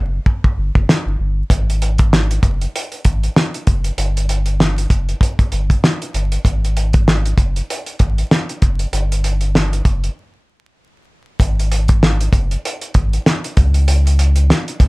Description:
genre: hip hop, boom-bap hip-hop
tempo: 97 BPM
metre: 4/4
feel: swing 56% on 16ths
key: unclear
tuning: A4 = 440 Hz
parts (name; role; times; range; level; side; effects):
- sub bass with octave; bass; 0.0-14.9 s; F#1 to C#2; -16 LUFS; equal; none
- cloth-damped thuddy drum kit; drums; 0.3-14.9 s; hi-hat, kick drum, snare drum; -15 LUFS; equal; none
room: little or no reverb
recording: vinyl crackle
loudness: -14 LUFS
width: side -24 dB against mid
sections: 0.0-11.4 A section; 11.4-14.9 B section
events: break 0.0-1.5, 10.2-11.4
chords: none

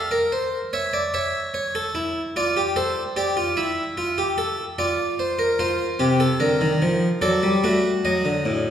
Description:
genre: classical, baroque-style 3-part fugue for harpsichord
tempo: 74 BPM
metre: 4/4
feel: straight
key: unclear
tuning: A4 = 439 Hz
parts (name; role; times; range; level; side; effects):
- harpsichord; solo; 0.0-8.7 s; A2 to F5; -20 LUFS; equal; none
room: wet recital hall reverb, RT60 1.5 s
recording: recorded in a church or concert hall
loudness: -20 LUFS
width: side -9 dB against mid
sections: 0.0-8.7 A section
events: none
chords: 0.0 Dm (rootless); 0.7 A/C#; 2.4 Dm/F; 5.6 Gm; 7.2 D/F#

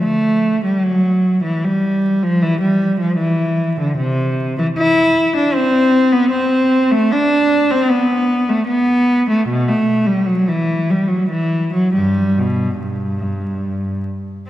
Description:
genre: classical, baroque-style suite movement for unaccompanied cello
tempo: 69-79 BPM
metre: 3/4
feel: rubato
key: G major from 4.8 s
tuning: A4 = 438 Hz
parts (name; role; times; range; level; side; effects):
- rich cello; solo; 0.0-14.0 s; G2 to E4; -14 LUFS; equal; none
room: wet concert hall reverb, RT60 2.6 s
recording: vinyl crackle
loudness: -14 LUFS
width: side -13 dB against mid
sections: 0.0-14.5 A section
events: none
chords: none

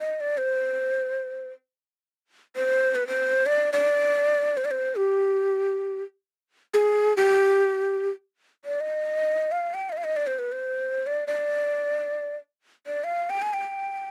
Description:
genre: Arabic maqam ensemble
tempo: free time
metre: none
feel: none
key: G maqam hijaz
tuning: A4 = 440 Hz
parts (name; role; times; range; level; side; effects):
- breathy ney; solo; 0.0-14.1 s; G4 to Ab5+29c; -25 LUFS; equal; none
room: little or no reverb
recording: dry, close 1970s-style studio recording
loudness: -25 LUFS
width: mono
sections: 0.0-8.2 A section; 8.2-14.1 A section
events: none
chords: none

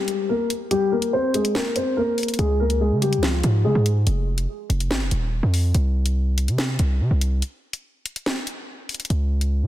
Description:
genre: hip hop, drill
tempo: 143 BPM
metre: 4/4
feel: half-time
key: C phrygian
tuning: A4 = 440 Hz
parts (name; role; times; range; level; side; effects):
- dark concert grand piano; melody; 0.0-3.8 s; F3 to C5; -22 LUFS; left 1 dB; low-pass filter, ping-pong delay
- drill drum kit; drums; 0.1-9.5 s; hi-hat, snare drum; -27 LUFS; equal; none
- hard-hitting 808-style bass; bass; 2.4-9.7 s; Eb1 to Db3; -20 LUFS; equal; none
room: digital ambience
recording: dense, heavily limited modern master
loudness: -20 LUFS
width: side -13 dB against mid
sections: 0.0-9.7 A section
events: break 0.0-2.4, 4.1-9.7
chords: 0.0 C5; 2.4 Db; 4.1 F7(no3); 5.7 N.C.; 9.1 Db5

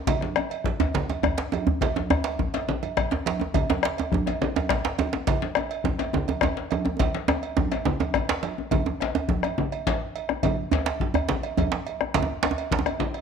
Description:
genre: west african traditional, West African drum ensemble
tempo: 139 BPM (dotted quarters)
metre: 12/8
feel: straight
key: none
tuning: none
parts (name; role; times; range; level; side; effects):
- bombo; percussion; 0.1-13.2 s; none; -28 LUFS; left 5 dB; none
- congas; percussion; 0.1-13.1 s; none; -31 LUFS; right 6 dB; none
- cowbell; percussion; 0.1-13.2 s; none; -33 LUFS; right 11 dB; none
- djembe; percussion; 0.1-13.1 s; none; -31 LUFS; left 7 dB; none
- djembe; percussion; 0.1-12.9 s; none; -26 LUFS; right 5 dB; none
room: moderate echo chamber reverb, RT60 1.3 s, small room ambience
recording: 1960s-style stereo with parts hard left and right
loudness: -23 LUFS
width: side -6 dB against mid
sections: 0.0-8.7 A section; 8.7-13.2 B section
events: drum fill 7.0-8.7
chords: none

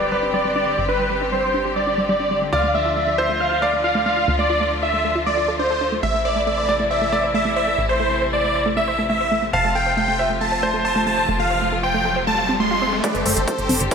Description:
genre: uplifting trance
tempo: 137 BPM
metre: 4/4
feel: straight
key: unclear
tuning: A4 = 440 Hz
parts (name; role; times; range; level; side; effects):
- supersaw chords; melody; 0.0-13.9 s; A4 to C6; -20 LUFS; equal; sidechain pumping, low-pass filter, tape echo
- bright concert grand piano; second line; 0.0-11.2 s; B4 to F5; -24 LUFS; equal; tape echo
- clear studio string section; sustained chords; 0.0-13.9 s; C3 to G4; -27 LUFS; left 2 dB; sidechain pumping
- wide unison pluck; arpeggios; 0.0-13.9 s; G3 to F5; -27 LUFS; right 3 dB; sidechain pumping, tape echo
- plucky analog bass; bass; 0.0-13.9 s; F1 to D2; -29 LUFS; equal; sidechain pumping
- impact and riser; sound effects; 0.2-0.8, 10.9-13.9 s; none; -28 LUFS; equal; none
- electronic hi-hat and congas; drums; 13.0-13.9 s; none; -22 LUFS; equal; sidechain pumping on hats, low-pass filter on hats, low-pass filter on snare, sidechain pumping on perc, low-pass filter on perc, low-pass filter on room
- electronic kick drum; drums; 13.0-13.9 s; none; -25 LUFS; equal; high-pass filter on kick, high-pass filter on room
room: wet lush hall reverb, RT60 1.8 s, digital ambience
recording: none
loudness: -17 LUFS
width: side -6 dB against mid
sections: 0.0-13.0 A section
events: impact 0.0-0.8; filter sweep on supersaw synth 0.0-13.0; filter sweep on synth arpeggio sound 0.0-13.0; riser 10.9-13.0, 13.0-13.9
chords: 0.0 Gsus4; 2.5 Dm; 6.0 Am; 9.5 F; 13.0 Gsus4

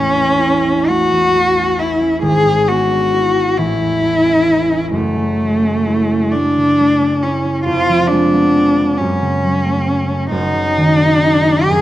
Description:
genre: classical, romantic duo for cello and harp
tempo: 45 BPM (dotted quarters)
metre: 6/8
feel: uneven beats, rubato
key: A major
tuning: A4 = 439 Hz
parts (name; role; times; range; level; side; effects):
- dark cello; melody; 0.0-11.8 s; A3 to Ab4; -14 LUFS; left 1 dB; none
- concert harp; accompaniment; 0.0-11.8 s; E#1 to Db5; -17 LUFS; right 1 dB; none
room: moderate scoring stage reverb, RT60 1.7 s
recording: close, detailed microphones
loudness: -12 LUFS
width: side -14 dB against mid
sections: 0.0-11.8 A section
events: none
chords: 0.0 A; 2.2 E7/G#; 3.6 A; 4.9 F#m7; 7.7 C#7/E#; 9.0 F#m; 10.3 Ebm7/Gb

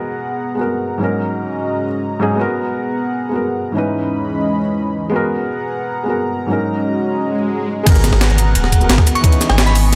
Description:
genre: liquid drum and bass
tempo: 175 BPM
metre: 4/4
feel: straight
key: G# minor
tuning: A4 = 440 Hz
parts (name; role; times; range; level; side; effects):
- felt-muted upright piano; accompaniment; 0.0-10.0 s; G#2 to B4; -22 LUFS; equal; digital delay
- warm analog pad; sustained chords; 0.0-10.0 s; E3 to C#6; -24 LUFS; equal; chorus, sidechain pumping
- swell and impact; sound effects; 7.3-9.2 s; none; -26 LUFS; equal; none
- warm sub bass; bass; 7.9-10.0 s; D#1 to G#1; -16 LUFS; equal; none
- breakbeat sampler-style drum kit; drums; 7.9-10.0 s; crash cymbal, hi-hat, shaker, snare drum; -21 LUFS; equal; low-pass filter on hats, low-pass filter on cymbals, low-pass filter on snare, low-pass filter on perc, low-pass filter on room
- crunchy breakbeat drum kit; drums; 7.9-10.0 s; ride cymbal, snare drum; -28 LUFS; equal; high-pass filter on cymbals, high-pass filter on snare, high-pass filter on room
- electronic kick drum; drums; 7.9-9.3 s; none; -14 LUFS; equal; none
- glassy synth bell; melody; 9.2-9.9 s; G#5 to C#6; -22 LUFS; equal; chorus, phaser, dub echo
room: light reverb, digital ambience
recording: none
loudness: -17 LUFS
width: mono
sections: 0.0-7.9 A section; 7.9-10.0 B section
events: swell 7.3-7.9; drop 7.9-10.0; impact 7.9-9.2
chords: 0.0 G#m9; 1.0 D#m7/G#; 2.4 G#m9; 3.8 C#m9; 5.1 G#m9; 6.5 D#m7/G#; 7.9 G#m9; 9.2 C#m9

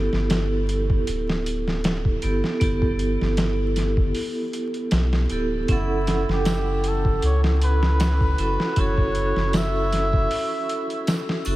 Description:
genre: trip hop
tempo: 78 BPM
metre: 4/4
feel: swing 54% on 16ths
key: F# phrygian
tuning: A4 = 440 Hz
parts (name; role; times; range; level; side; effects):
- vibraphone with hard mallets; accompaniment; 0.0-11.6 s; B3 to F#5; -26 LUFS; right 2 dB; tremolo, tape echo
- soft dub sub bass; bass; 0.0-11.6 s; D1 to C#2; -23 LUFS; equal; none
- trip hop sampler-style drum kit; drums; 0.1-11.6 s; hi-hat, kick drum, snare drum; -25 LUFS; equal; small room ambience
- trumpet with cup mute; melody; 5.7-11.5 s; E4 to E5; -27 LUFS; equal; tape echo
- tambourine and triangle; percussion; 6.5-11.6 s; none; -45 LUFS; right 4 dB; none
room: light reverb, studio reverb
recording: vinyl crackle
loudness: -20 LUFS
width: side -16 dB against mid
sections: 0.0-11.6 A section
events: none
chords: 0.0 G69; 5.7 F#m7

